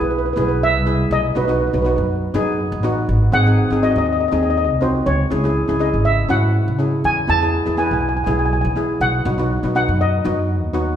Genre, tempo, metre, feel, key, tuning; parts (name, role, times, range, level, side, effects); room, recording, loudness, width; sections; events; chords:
calypso; 121 BPM; 4/4; straight; E major; A4 = 441 Hz
steel pan; melody; 0.0-10.7 s; B4 to A5; -20 LUFS; equal
steel pan; accompaniment; 0.0-11.0 s; B3 to B4; -21 LUFS; equal
upright bass; bass; 0.0-11.0 s; G#1 to E3; -20 LUFS; equal
wet recital hall reverb, RT60 1.7 s; recorded in a church or concert hall; -16 LUFS; side -9 dB against mid
0.0-11.0 A section
0.0 E; 1.1 B; 3.1 G#7; 5.1 C#m; 7.0 E; 9.0 B